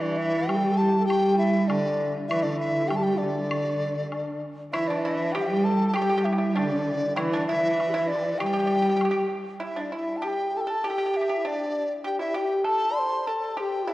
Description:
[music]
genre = chinese traditional, Chinese chamber ensemble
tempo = 98 BPM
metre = 2/4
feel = straight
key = G zhi mode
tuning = A4 = 440 Hz
[part]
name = mellow large dizi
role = melody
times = 0.0-13.9 s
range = D5 to C6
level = -27 LUFS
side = equal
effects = none
[part]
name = mellow xiao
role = second line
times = 0.0-13.9 s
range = D4 to C6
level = -28 LUFS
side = left 1 dB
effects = none
[part]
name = warm cello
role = second line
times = 0.0-9.3 s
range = D3 to G3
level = -27 LUFS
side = right 2 dB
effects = none
[part]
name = woodblock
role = percussion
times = 0.5-9.1 s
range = none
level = -38 LUFS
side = left 1 dB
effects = none
[part]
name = pipa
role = second line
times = 4.7-13.9 s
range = D4 to A4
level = -32 LUFS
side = right 1 dB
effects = none
[sound]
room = wet concert hall reverb, RT60 2.5 s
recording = worn, warbling old tape, cassette tape, warbly pitch drift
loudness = -23 LUFS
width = side -16 dB against mid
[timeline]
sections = 0.0-9.6 A section; 9.6-13.9 A section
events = none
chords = none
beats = 0.48 | 1.09 1.69 | 2.30 2.90 | 3.51 4.12 | 4.74 5.36 | 5.96 6.56 | 7.17 7.77 | 8.38 9.00 | 9.61 10.23 | 10.84 11.45 | 12.05 12.65 | 13.26 13.88

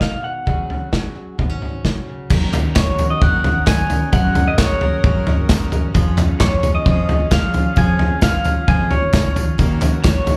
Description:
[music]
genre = indie folk with a building arrangement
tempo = 132 BPM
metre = 4/4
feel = straight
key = unclear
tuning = A4 = 440 Hz
[part]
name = electric guitar through a small old amp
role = melody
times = 0.0-10.4 s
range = C#5 to G#5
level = -25 LUFS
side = equal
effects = tremolo, slapback echo
[part]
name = fingerpicked steel-string acoustic guitar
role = accompaniment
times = 0.0-4.1 s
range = G#2 to B4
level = -34 LUFS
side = equal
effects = none
[part]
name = loose indie drum kit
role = drums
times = 0.0-10.4 s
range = crash cymbal, kick drum, snare drum, toms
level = -19 LUFS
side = equal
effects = none
[part]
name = picked steel-string acoustic guitar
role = accompaniment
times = 2.3-10.4 s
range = D#3 to A#4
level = -29 LUFS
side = equal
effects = none
[part]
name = warm studio string section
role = sustained chords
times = 2.3-10.4 s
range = D#3 to A#4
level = -36 LUFS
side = equal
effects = none
[part]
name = upright bass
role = bass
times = 2.3-10.4 s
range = C#2 to E#3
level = -23 LUFS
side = equal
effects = none
[part]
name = tambourine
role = percussion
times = 2.3-10.4 s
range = none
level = -40 LUFS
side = equal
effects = none
[part]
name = group handclap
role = percussion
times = 2.5-10.1 s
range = none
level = -34 LUFS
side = equal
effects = none
[part]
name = glockenspiel with rubber mallets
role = second line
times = 2.8-10.4 s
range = C#6 to G#6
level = -29 LUFS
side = equal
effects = slapback echo, analog delay
[sound]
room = light reverb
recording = live gig heard through the venue's PA, club reverb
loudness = -17 LUFS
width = mono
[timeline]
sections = 0.0-2.3 A section; 2.3-10.4 B section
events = none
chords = 0.5 C#sus4; 2.3 D#m7; 4.1 F#add9; 6.0 C#/E#; 9.6 D#m7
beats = 0.01 | 0.47 0.93 1.39 1.85 | 2.31 2.76 3.22 3.68 | 4.13 4.59 5.04 5.50 | 5.95 6.41 6.86 7.32 | 7.77 8.22 8.68 9.13 | 9.59 10.04

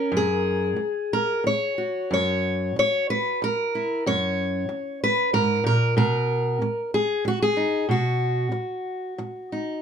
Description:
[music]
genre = folk, solo fingerstyle acoustic guitar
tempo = 93 BPM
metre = 3/4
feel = rubato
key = F# major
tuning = A4 = 440 Hz
[part]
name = fingerpicked steel-string acoustic guitar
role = solo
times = 0.0-9.8 s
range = F#2 to C#5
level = -22 LUFS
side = equal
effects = none
[sound]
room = moderate studio ambience, RT60 0.5 s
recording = none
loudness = -22 LUFS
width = side -7 dB against mid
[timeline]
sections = 0.0-9.8 A section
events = none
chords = 0.0 F#add9; 2.1 F#; 6.0 B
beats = | 0.13 0.77 1.43 | 2.10 2.76 3.41 | 4.06 4.69 5.33 | 5.96 6.60 7.25 | 7.89 8.53 9.19

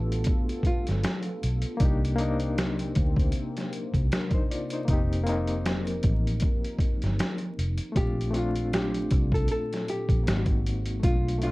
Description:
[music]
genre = lo-fi hip hop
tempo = 78 BPM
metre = 4/4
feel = swing 57% on 16ths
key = Bb major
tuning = A4 = 441 Hz
[part]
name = nylon-string guitar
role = melody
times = 0.0-0.9, 8.0-11.5 s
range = F4 to A4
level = -32 LUFS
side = equal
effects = none
[part]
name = barky reed electric piano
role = accompaniment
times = 0.0-11.5 s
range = A3 to D5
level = -33 LUFS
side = left 2 dB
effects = overdrive, fast tremolo, cassette tape
[part]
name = dark analog pad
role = sustained chords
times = 0.0-11.5 s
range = Bb2 to Bb4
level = -38 LUFS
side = equal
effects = chorus
[part]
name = vintage muted fingered electric bass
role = bass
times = 0.0-11.5 s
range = F1 to D2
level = -28 LUFS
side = equal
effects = none
[part]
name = trip hop sampler-style drum kit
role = drums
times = 0.1-11.5 s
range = finger snaps, hi-hat, kick drum, snare drum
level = -26 LUFS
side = equal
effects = none
[sound]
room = light reverb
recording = dark, warm production, vinyl crackle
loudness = -24 LUFS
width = side -21 dB against mid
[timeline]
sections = 0.0-11.5 A section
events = none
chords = 0.0 G7; 1.8 Cm7; 4.9 F7sus4; 8.0 Bbmaj7; 10.3 Ab9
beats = 0.27 1.04 | 1.81 2.58 3.34 4.11 | 4.88 5.65 6.42 7.19 | 7.96 8.73 9.50 10.27 | 11.04

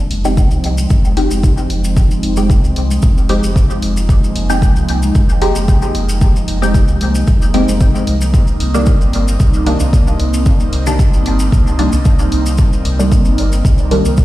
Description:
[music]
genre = dub techno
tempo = 113 BPM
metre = 4/4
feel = swing 53% on 16ths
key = F minor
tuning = A4 = 440 Hz
[part]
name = airy breathy pad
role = sustained chords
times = 0.0-14.2 s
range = F3 to Eb4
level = -20 LUFS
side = right 1 dB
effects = chorus, phaser, sidechain pumping
[part]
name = warm sub bass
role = bass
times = 0.1-14.2 s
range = F1 to C2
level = -16 LUFS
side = equal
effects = sidechain pumping
[part]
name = electronic hi-hat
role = drums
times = 0.1-14.0 s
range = none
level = -26 LUFS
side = left 1 dB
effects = none
[part]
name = filtered dub chord stab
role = stabs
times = 0.2-14.1 s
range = Eb3 to G4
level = -19 LUFS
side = equal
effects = phaser, sidechain pumping, dub echo
[part]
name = maracas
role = percussion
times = 0.2-14.2 s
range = none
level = -29 LUFS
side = left 1 dB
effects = none
[part]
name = electronic kick drum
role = drums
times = 0.4-14.2 s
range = none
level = -12 LUFS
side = equal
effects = none
[sound]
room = digital ambience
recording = played on a big sound system in a bare room, stone room reverb, vinyl crackle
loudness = -11 LUFS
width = side -16 dB against mid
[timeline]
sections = 0.0-14.2 A section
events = none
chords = 0.0 Fm7; 8.3 Cm7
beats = 0.37 0.90 1.44 | 1.97 2.50 3.03 3.56 | 4.09 4.62 5.15 5.68 | 6.21 6.74 7.28 7.81 | 8.34 8.87 9.40 9.93 | 10.46 10.99 11.52 12.05 | 12.59 13.12 13.65 14.18

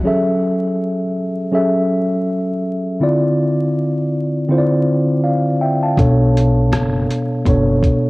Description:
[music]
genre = lo-fi hip hop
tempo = 81 BPM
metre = 4/4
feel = swing 60% on 16ths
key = unclear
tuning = A4 = 440 Hz
[part]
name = mellow tine electric piano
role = accompaniment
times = 0.0-8.1 s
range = B2 to A5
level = -15 LUFS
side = equal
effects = medium stereo tremolo
[part]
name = upright bass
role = bass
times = 6.0-7.8 s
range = F#1 to B1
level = -18 LUFS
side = equal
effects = none
[part]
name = lo-fi sampler-style drum kit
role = drums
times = 6.0-8.0 s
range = hi-hat, kick drum, rim click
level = -18 LUFS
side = equal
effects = none
[sound]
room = moderate spring reverb, RT60 2.2 s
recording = home recording on cassette, vinyl crackle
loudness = -14 LUFS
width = side -22 dB against mid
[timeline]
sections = 0.0-8.1 A section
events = none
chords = 0.0 F#m9; 3.0 Dm9; 6.0 Bm9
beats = | 0.05 0.79 1.53 2.27 | 3.01 3.75 4.49 5.23 | 5.97 6.71 7.45

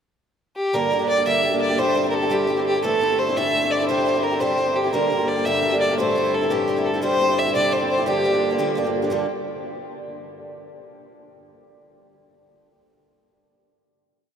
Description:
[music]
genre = celtic folk, Celtic jig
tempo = 114 BPM (dotted quarters)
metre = 6/8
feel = straight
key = G dorian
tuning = A4 = 440 Hz
[part]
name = rich fiddle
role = melody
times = 0.6-8.7 s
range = G4 to E5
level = -21 LUFS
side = equal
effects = none
[part]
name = picked old ladder-braced acoustic guitar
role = accompaniment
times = 0.7-9.3 s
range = G2 to A4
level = -25 LUFS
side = right 2 dB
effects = none
[part]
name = pedal harmonium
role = drone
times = 0.7-9.1 s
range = G2 to D3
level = -27 LUFS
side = left 3 dB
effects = none
[sound]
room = wet cathedral reverb, RT60 5.5 s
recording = in a vast, echoing space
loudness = -18 LUFS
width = side -8 dB against mid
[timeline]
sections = 0.0-0.7 pickup bar; 0.7-9.1 A section; 9.1-10.2 final chord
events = none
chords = 0.0 N.C.; 0.7 Gm; 1.8 C; 2.8 Am; 3.9 C; 4.9 Gm; 6.0 Am; 7.0 C; 8.1 Gm7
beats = 0.21 | 0.74 1.26 | 1.79 2.31 | 2.84 3.36 | 3.89 4.41 | 4.93 5.46 | 5.98 6.50 | 7.03 7.55 | 8.07 8.59 | 9.12

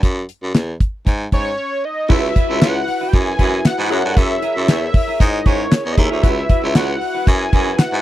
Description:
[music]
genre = early-eighties boogie funk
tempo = 116 BPM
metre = 4/4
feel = straight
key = C# dorian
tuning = A4 = 440 Hz
[part]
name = growling baritone saxophone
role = bass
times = 0.0-8.0 s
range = C#2 to G#2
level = -21 LUFS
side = equal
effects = none
[part]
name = damped 70s drum kit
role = drums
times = 0.0-7.9 s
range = crash cymbal, handclaps, hi-hat, kick drum, snare drum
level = -14 LUFS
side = equal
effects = none
[part]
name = fat analog lead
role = melody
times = 1.3-8.0 s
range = C#5 to G#5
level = -22 LUFS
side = equal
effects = chorus
[part]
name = funky polysynth comp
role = accompaniment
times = 2.1-8.0 s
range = E4 to E5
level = -24 LUFS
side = left 1 dB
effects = chorus
[part]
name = semi-hollow electric guitar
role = riff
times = 2.1-8.0 s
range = E4 to C#5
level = -27 LUFS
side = right 7 dB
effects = wide subtle chorus
[sound]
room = little or no reverb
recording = dry, close 1970s-style studio recording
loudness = -14 LUFS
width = side -14 dB against mid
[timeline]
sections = 0.0-2.1 A section; 2.1-8.0 B section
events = break 1.6-2.1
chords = 0.0 F#sus2; 2.1 C#m7; 3.9 F#9; 6.2 C#m7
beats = | 0.03 0.55 1.06 1.58 | 2.10 2.62 3.13 3.65 | 4.17 4.69 5.20 5.72 | 6.24 6.75 7.27 7.79

